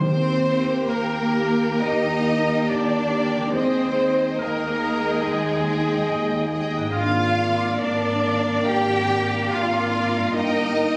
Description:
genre	classical, slow romantic movement for symphony orchestra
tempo	70 BPM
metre	4/4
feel	rubato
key	Eb major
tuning	A4 = 441 Hz
part	mellow clarinet	second line	0.0-11.0 s	Ab4 to G5	-31 LUFS	equal	none
part	warm studio violin section	second line	0.0-11.0 s	Ab4 to G5	-29 LUFS	equal	none
part	dark French horn section	sustained chords	0.0-11.0 s	Ab3 to G4	-29 LUFS	equal	none
part	concert harp	arpeggios	0.0-11.0 s	G2 to G4	-36 LUFS	equal	none
part	warm studio cello section	bass	0.0-11.0 s	Ab3 to G4	-28 LUFS	equal	none
part	warm studio double bass section	bass	0.0-11.0 s	G1 to Eb2	-32 LUFS	equal	none
part	timpani	percussion	0.0-1.3 s	Eb3	-27 LUFS	equal	none
part	rich studio violin section	melody	0.4-11.0 s	F5 to G5	-39 LUFS	equal	none
part	rich studio viola section	accompaniment	0.5-11.0 s	G4 to Eb5	-31 LUFS	equal	none
room	moderate scoring stage reverb, RT60 1.6 s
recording	recorded on a phone in the room, club reverb, vinyl crackle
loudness	-22 LUFS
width	mono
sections	0.0-11.0 A section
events	none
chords	0.0 Eb; 6.9 Bb7/Ab; 10.3 Eb/G

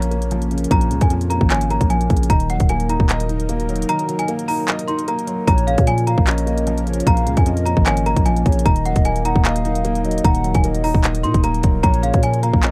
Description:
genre	hip hop, trap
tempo	151 BPM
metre	4/4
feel	half-time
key	Bb minor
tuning	A4 = 440 Hz
part	worn celesta	melody	0.0-12.7 s	F5 to C6	-26 LUFS	equal	none
part	felt-muted upright piano	accompaniment	0.0-12.7 s	Bb2 to Eb5	-26 LUFS	equal	none
part	dark analog pad	sustained chords	0.0-12.7 s	F3 to Bb4	-30 LUFS	equal	chorus
part	growling 808-style bass	bass	0.0-12.7 s	Eb1 to Bb2	-23 LUFS	equal	none
part	trap drum kit	drums	0.0-12.7 s	handclaps, hi-hat, kick drum	-21 LUFS	equal	none
part	hollow clarinet-like synth lead	second line	5.5-12.7 s	Db5 to Gb5	-30 LUFS	equal	chorus, tape echo
room	little or no reverb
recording	dark, warm production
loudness	-18 LUFS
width	mono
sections	0.0-5.5 A section; 5.5-12.7 B section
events	break 3.9-5.5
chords	0.0 Bbm; 2.3 Ebm; 5.5 Bbm; 8.7 Ebm; 11.8 Bbm

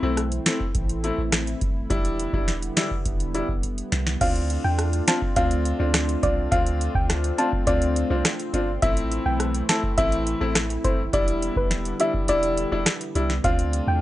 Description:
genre	dancehall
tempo	104 BPM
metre	4/4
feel	straight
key	D dorian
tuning	A4 = 440 Hz
part	clear grand piano	accompaniment	0.0-14.0 s	G3 to F4	-27 LUFS	left 2 dB	none
part	warm analog pad	sustained chords	0.0-14.0 s	C3 to F4	-31 LUFS	equal	chorus, sidechain pumping
part	punchy sub bass	bass	0.0-14.0 s	E1 to E2	-26 LUFS	equal	none
part	booming analog drum machine	drums	0.2-13.9 s	crash cymbal, hi-hat, kick drum, rim click, snare drum	-24 LUFS	equal	none
part	soft round pluck	melody	4.2-14.0 s	B4 to A5	-26 LUFS	equal	chorus
room	little or no reverb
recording	dry, gritty hardware recording, nothing above 10.8 kHz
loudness	-21 LUFS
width	side -15 dB against mid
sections	0.0-4.2 A section; 4.2-14.0 B section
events	drum fill 3.6-4.2; kick muted 12.3-13.4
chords	0.0 Am; 1.9 Em7; 4.2 Dm7; 8.8 Am; 11.1 Em7; 13.4 Dm7

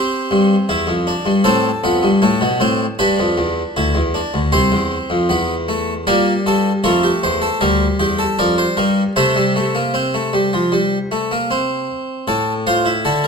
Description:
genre	classical, baroque-style 4-part fugue for harpsichord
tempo	78 BPM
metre	4/4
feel	straight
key	C major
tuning	A4 = 440 Hz
part	harpsichord	solo	0.0-13.3 s	C2 to E5	-14 LUFS	equal	none
room	wet recital hall reverb, RT60 1.4 s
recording	close, detailed microphones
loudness	-14 LUFS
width	side -5 dB against mid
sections	0.0-6.1 A section; 6.1-12.3 B section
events	none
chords	0.0 C; 1.5 F; 3.0 G7; 4.5 C; 6.1 Gm; 9.2 C; 12.3 F/A

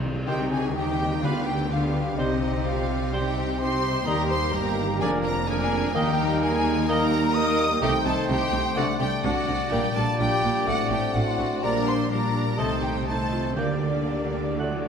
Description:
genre	classical, dramatic, fast romantic movement for symphony orchestra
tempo	126 BPM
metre	4/4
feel	rubato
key	C minor, G minor from 7.8 s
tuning	A4 = 440 Hz
part	warm symphonic violin section	melody	0.0-14.9 s	D5 to Eb6	-32 LUFS	left 2 dB	none
part	warm symphonic violin section	second line	0.0-14.9 s	D4 to Eb5	-33 LUFS	left 2 dB	none
part	rich symphonic viola section	accompaniment	0.0-14.9 s	Eb3 to G4	-32 LUFS	right 2 dB	none
part	warm bassoon	accompaniment	0.0-14.8 s	Eb3 to Bb3	-36 LUFS	right 2 dB	none
part	dark French horn section	sustained chords	0.0-14.9 s	A3 to A4	-32 LUFS	left 3 dB	none
part	mellow trombone section	sustained chords	0.0-14.9 s	A2 to A3	-34 LUFS	right 2 dB	none
part	concert harp	arpeggios	0.0-14.9 s	A2 to Eb6	-32 LUFS	left 7 dB	none
part	clear symphonic double bass section	bass	0.0-14.9 s	F1 to Eb2	-32 LUFS	right 3 dB	none
part	rich symphonic cello section	bass	0.0-14.9 s	Eb2 to Eb3	-30 LUFS	right 3 dB	none
part	timpani	percussion	0.0-1.9, 13.6-14.9 s	C3 to D3	-36 LUFS	equal	none
part	mellow hollow silver concert flute	second line	0.3-14.9 s	D5 to Eb6	-32 LUFS	left 2 dB	none
part	warm oboe	second line	0.3-14.8 s	B4 to G5	-35 LUFS	right 2 dB	none
part	warm trumpet	stabs	0.3-14.9 s	G4 to D5	-32 LUFS	right 2 dB	none
part	tam-tam and cymbal swell	percussion	0.3-2.1, 11.6-14.9 s	none	-38 LUFS	left 4 dB	none
room	wet scoring stage reverb, RT60 2.0 s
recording	none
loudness	-22 LUFS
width	side -7 dB against mid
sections	0.3-14.9 A section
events	timpani fill 0.0, 14.6; band accent 0.3-0.8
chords	0.3 Cm; 1.2 G7/D; 2.2 Cm; 4.1 Eb; 5.0 Bb7/F; 5.9 Eb; 7.8 Am7b5/C; 8.8 D7/C; 9.7 Gm/Bb; 10.7 D7/A; 11.6 Gm/Bb; 12.6 Adim/C; 13.6 Gm/D

